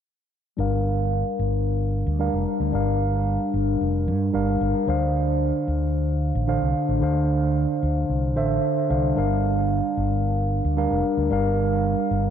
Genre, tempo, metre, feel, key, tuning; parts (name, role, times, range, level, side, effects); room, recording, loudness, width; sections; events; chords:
sunset chillout; 112 BPM; 4/4; straight; G minor; A4 = 443 Hz
mellow tine electric piano; accompaniment; 0.6-12.3 s; D3 to F5; -23 LUFS; moving between left 5 dB and right 4 dB; auto-pan, low-pass filter, analog delay
fretless electric bass; bass; 0.6-12.3 s; F1 to G2; -24 LUFS; equal
wet lush hall reverb, RT60 2.5 s; dreamy mix soaked in reverb; -20 LUFS; side -9 dB against mid
0.6-12.3 A section
filter sweep on tine electric piano 0.6-12.3
0.6 Gm7; 4.9 Dm7; 9.2 Gm7